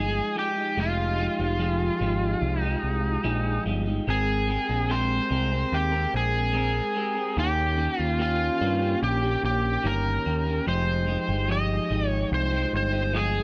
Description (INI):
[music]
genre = indie pop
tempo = 73 BPM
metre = 4/4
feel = straight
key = F minor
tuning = A4 = 440 Hz
[part]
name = overdriven slide guitar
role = melody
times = 0.0-13.4 s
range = F4 to Eb5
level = -30 LUFS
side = equal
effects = subtle chorus, tape echo
[part]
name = electric guitar through a small old amp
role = accompaniment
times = 0.0-13.4 s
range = Eb3 to Bb4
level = -32 LUFS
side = equal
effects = lush chorus, warbly pitch drift
[part]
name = ensemble organ-string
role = sustained chords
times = 0.0-13.4 s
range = Eb3 to G5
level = -39 LUFS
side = equal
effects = none
[part]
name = picked electric bass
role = bass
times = 0.0-13.4 s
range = F1 to G2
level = -30 LUFS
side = equal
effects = none
[sound]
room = light reverb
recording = none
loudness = -26 LUFS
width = mono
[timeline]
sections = 0.0-13.4 A section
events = none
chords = 0.0 Fm9; 4.1 Abmaj9; 7.4 Eb7; 10.7 Fm9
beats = | 0.78 1.60 2.43 3.25 | 4.08 4.90 5.72 6.55 | 7.37 8.20 9.02 9.85 | 10.67 11.49 12.32 13.14